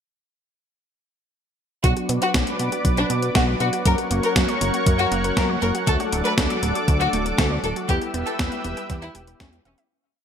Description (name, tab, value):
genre	italo disco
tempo	119 BPM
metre	4/4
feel	straight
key	B minor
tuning	A4 = 439 Hz
part	warm chamber violin section	melody	1.8-9.7 s	C#4 to B4	-26 LUFS	left 2 dB	ping-pong delay
part	lush unison pad	sustained chords	1.8-9.9 s	A4 to E6	-27 LUFS	equal	chorus
part	wide unison pluck	arpeggios	1.8-9.8 s	A3 to G5	-31 LUFS	right 4 dB	ping-pong delay
part	analog synth brass	stabs	1.8-9.9 s	F#3 to G4	-29 LUFS	left 2 dB	chorus
part	fat analog bass	bass	1.8-9.8 s	D1 to B2	-26 LUFS	equal	tube saturation
part	clean 12-bit digital drum machine	drums	1.8-9.9 s	hi-hat, snare drum	-26 LUFS	equal	gated reverb
part	electronic kick drum	drums	1.8-9.5 s	none	-22 LUFS	equal	none
room	moderate plate reverb, RT60 2.2 s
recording	bright 1980s-style digital production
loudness	-19 LUFS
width	side -8 dB against mid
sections	1.8-9.9 verse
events	filter sweep on analog polysynth 1.8-9.9; fade-out 7.2-9.9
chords	1.8 Bm; 3.9 F#; 5.9 D; 7.9 Em